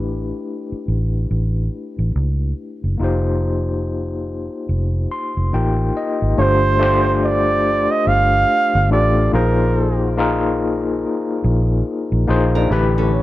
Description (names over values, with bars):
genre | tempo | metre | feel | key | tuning
R&B, neo-soul | 71 BPM | 4/4 | swing 61% on 16ths | unclear | A4 = 441 Hz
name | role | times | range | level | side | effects
overdriven tine electric piano | accompaniment | 0.0-13.2 s | D3 to C6 | -21 LUFS | left 3 dB | medium tremolo, low-pass filter
vintage muted fingered electric bass | bass | 0.0-13.2 s | F1 to C#2 | -19 LUFS | equal | none
warm flugelhorn | melody | 6.4-13.2 s | Bb4 to F5 | -18 LUFS | right 3 dB | low-pass filter
nylon-string guitar | second line | 12.6-13.2 s | B3 to Bb4 | -24 LUFS | right 4 dB | none
room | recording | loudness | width
light reverb | none | -16 LUFS | side -15 dB against mid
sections
0.0-6.4 A section; 6.4-13.2 B section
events
filter sweep 0.0-6.4; tine electric piano fill 4.7-6.4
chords
0.0 A9sus4; 3.0 F9sus4; 6.4 G9sus4; 9.3 Bb9sus4; 12.7 A9sus4